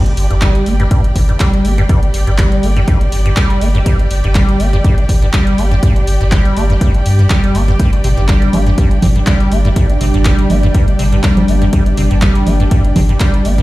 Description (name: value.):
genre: acid house.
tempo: 122 BPM.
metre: 4/4.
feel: swing 54% on 16ths.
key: unclear.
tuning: A4 = 440 Hz.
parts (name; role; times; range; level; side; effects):
liquid acid bass; riff; 0.0-13.6 s; G2 to Bb3; -16 LUFS; equal; overdrive, wide subtle chorus, digital delay.
clear studio string section; texture; 0.0-13.6 s; G4 to G5; -24 LUFS; equal; sidechain pumping.
punchy analog drum machine; drums; 0.1-13.6 s; congas, handclaps, hi-hat; -21 LUFS; right 1 dB; overdrive.
warm sub bass; bass; 0.2-13.6 s; G1 to G2; -13 LUFS; equal; sidechain pumping.
electronic kick drum; drums; 0.4-13.3 s; none; -12 LUFS; equal; none.
warbly tape-like pad; sustained chords; 8.0-13.6 s; G3 to D5; -20 LUFS; equal; chorus, built-in reverb, sidechain pumping.
room: digital ambience.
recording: played on a big sound system in a bare room, large studio reverb.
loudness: -10 LUFS.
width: side -17 dB against mid.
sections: 0.0-13.6 A section.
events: none.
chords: 0.0 G5.